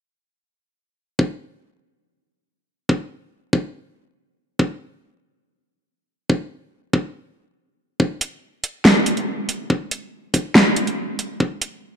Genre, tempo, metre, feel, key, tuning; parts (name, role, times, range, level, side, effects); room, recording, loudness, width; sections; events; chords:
heavy wobble dubstep; 141 BPM; 4/4; half-time
electronic kick drum; drums; 1.2-11.5 s; -19 LUFS; equal; high-pass filter on kick, studio reverb, high-pass filter on room
dubstep drum kit; drums; 8.2-11.7 s; hi-hat, snare drum; -16 LUFS; equal; studio reverb
moderate lush hall reverb, RT60 1.8 s, digital ambience; dark, warm production; -19 LUFS; side -8 dB against mid
1.2-12.0 A section